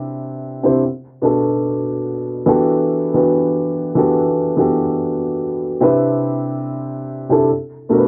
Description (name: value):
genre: hip hop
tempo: 72 BPM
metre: 4/4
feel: swing 56% on 16ths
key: E minor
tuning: A4 = 440 Hz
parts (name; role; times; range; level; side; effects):
- warm upright piano; solo; 0.0-8.1 s; B2 to C5; -18 LUFS; equal; cassette tape, low-pass filter
room: wet booth ambience, RT60 0.2 s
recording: home recording on cassette, low-pass filter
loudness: -18 LUFS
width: mono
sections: 0.0-8.1 A section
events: none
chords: 0.0 Cmaj7; 0.8 Bm7; 2.5 Em11; 5.8 Cmaj7; 7.5 Bm7